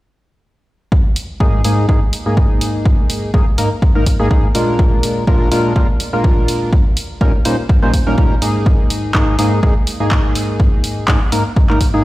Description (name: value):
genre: piano house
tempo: 124 BPM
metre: 4/4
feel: swing 55% on 16ths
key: unclear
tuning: A4 = 439 Hz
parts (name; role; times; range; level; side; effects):
- electronic kick drum; drums; 0.9-11.9 s; none; -13 LUFS; equal; none
- punchy analog drum machine; drums; 1.2-11.9 s; handclaps, hi-hat; -22 LUFS; equal; none
- percussive organ stab; riff; 1.4-12.0 s; Ab2 to C5; -16 LUFS; equal; analog chorus, sidechain pumping, digital delay
room: digital ambience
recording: played on a big sound system in a bare room, stone room reverb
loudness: -12 LUFS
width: side -17 dB against mid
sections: 0.9-12.0 A section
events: none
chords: 0.9 Absus2; 4.8 Bb7; 6.7 Eb7/Bb; 8.7 Absus2